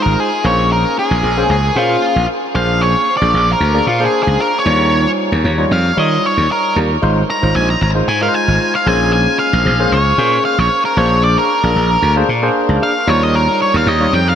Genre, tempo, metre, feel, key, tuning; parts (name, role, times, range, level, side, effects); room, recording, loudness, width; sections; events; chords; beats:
early-eighties boogie funk; 114 BPM; 4/4; straight; Bb dorian; A4 = 441 Hz
octave-fuzz lead guitar; melody; 0.0-14.3 s; F4 to Bb5; -15 LUFS; equal; distortion, analog delay
barky tine electric piano; accompaniment; 0.0-14.2 s; G3 to D5; -18 LUFS; left 1 dB; overdrive, wide subtle chorus
slap bass; bass; 0.1-14.3 s; Ab1 to Eb3; -15 LUFS; equal
wet huge ambient reverb, RT60 7.5 s; dreamy mix soaked in reverb; -12 LUFS; side -9 dB against mid
0.0-14.3 A section
lead electric guitar solo 0.0-14.3
0.4 Bbm9; 2.5 Bb9; 4.7 Eb9; 7.0 Ab6; 8.9 Bbm9; 11.0 Bb9; 13.1 Eb9
0.18 | 0.71 1.23 1.76 2.29 | 2.81 3.34 3.87 4.39 | 4.92 5.44 5.97 6.50 | 7.02 7.55 8.08 8.60 | 9.13 9.65 10.18 10.71 | 11.23 11.76 12.29 12.81 | 13.34 13.87